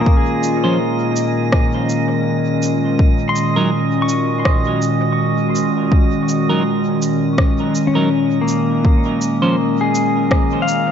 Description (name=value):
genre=ambient dub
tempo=82 BPM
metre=4/4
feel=swing 56% on 16ths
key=Eb minor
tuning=A4 = 440 Hz
part: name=warbly tape-like pad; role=sustained chords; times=0.0-10.9 s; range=Bb2 to Gb4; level=-17 LUFS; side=equal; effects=chorus, built-in reverb, vintage 12-bit sampler grit
part: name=pedal steel guitar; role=arpeggios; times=0.0-10.9 s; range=Bb3 to Db6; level=-22 LUFS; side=left 3 dB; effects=dub echo
part: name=drifting glass-harmonics texture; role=texture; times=0.0-10.9 s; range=Eb5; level=-26 LUFS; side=right 7 dB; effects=chorus, built-in reverb
part: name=electronic kick drum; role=drums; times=0.1-10.5 s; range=none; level=-14 LUFS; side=equal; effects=overdrive
part: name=electronic shaker and rim click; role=drums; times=0.4-10.8 s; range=none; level=-24 LUFS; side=equal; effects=dub echo
part: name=clean electric guitar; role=stabs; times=0.6-9.6 s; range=F3 to C5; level=-24 LUFS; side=right 2 dB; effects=dub echo
room=moderate echo chamber reverb, RT60 2.5 s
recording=nothing above 7.7 kHz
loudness=-14 LUFS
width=side -8 dB against mid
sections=0.0-10.9 A section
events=none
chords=0.0 Db; 3.0 Ebm; 8.8 Db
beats=| 0.07 0.80 1.53 2.26 | 3.00 3.73 4.46 5.19 | 5.92 6.65 7.39 8.12 | 8.85 9.58 10.31